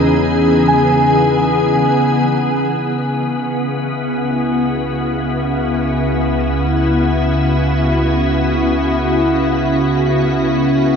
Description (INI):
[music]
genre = ambient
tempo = free time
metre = none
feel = none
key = C# minor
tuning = A4 = 440 Hz
[part]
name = soft additive organ-like pad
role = sustained chords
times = 0.0-11.0 s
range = C#3 to G#4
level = -15 LUFS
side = left 1 dB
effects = ensemble chorus, built-in reverb
[part]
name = deep rumbling drone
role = bass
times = 0.0-11.0 s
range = C#2 to E2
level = -24 LUFS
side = equal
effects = built-in reverb
[part]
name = analog drone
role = drone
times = 0.0-11.0 s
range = C#3 to C#4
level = -20 LUFS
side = equal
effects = chorus
[part]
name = muted felt-like synth keys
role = arpeggios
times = 0.7-2.8 s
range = G#5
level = -20 LUFS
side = right 2 dB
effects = chorus, tape echo
[sound]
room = wet cathedral reverb, RT60 5.1 s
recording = in a vast, echoing space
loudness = -13 LUFS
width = side -6 dB against mid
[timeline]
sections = 0.0-2.8 A section; 2.8-11.0 B section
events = none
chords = 0.0 Emaj7; 2.8 C#m7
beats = free time